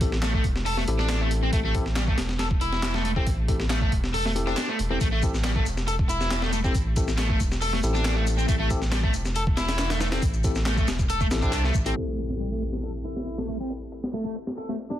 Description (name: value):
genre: breakbeat, breaks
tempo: 138 BPM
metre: 4/4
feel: straight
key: A minor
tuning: A4 = 442 Hz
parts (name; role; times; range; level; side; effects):
- tine electric piano; stabs; 0.0-15.0 s; C4 to A4; -34 LUFS; left 3 dB; overdrive, fast stereo tremolo, low-pass filter, dub echo
- saturated sub bass; bass; 0.0-11.9 s; E1 to C2; -27 LUFS; equal; tube saturation
- breakbeat sampler-style drum kit; drums; 0.0-15.0 s; hi-hat, kick drum, snare drum; -27 LUFS; equal; low-pass filter on snare, small room ambience, low-pass filter on hats, low-pass filter on kick, low-pass filter on cymbals
- crunchy overdriven guitar; riff; 0.2-15.0 s; G3 to A4; -29 LUFS; equal; low-pass filter, dub echo
- electronic handclaps and shaker; drums; 0.2-11.9 s; none; -36 LUFS; left 1 dB; soft clipping on snare, low-pass filter on snare, small room ambience, low-pass filter on perc, low-pass filter on room
- impact; sound effects; 12.0-13.7 s; none; -33 LUFS; equal; none
room: light reverb, digital ambience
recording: dense, heavily limited modern master, vinyl crackle, low-pass filter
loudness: -23 LUFS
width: side -12 dB against mid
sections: 0.0-12.0 A section; 12.0-15.0 B section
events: band accent 11.5; impact 12.0-13.7; filter sweep on overdriven electric guitar 12.0-15.0; filter sweep on tine electric piano 12.0-15.0; filter sweep 12.0-15.0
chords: 0.0 Am7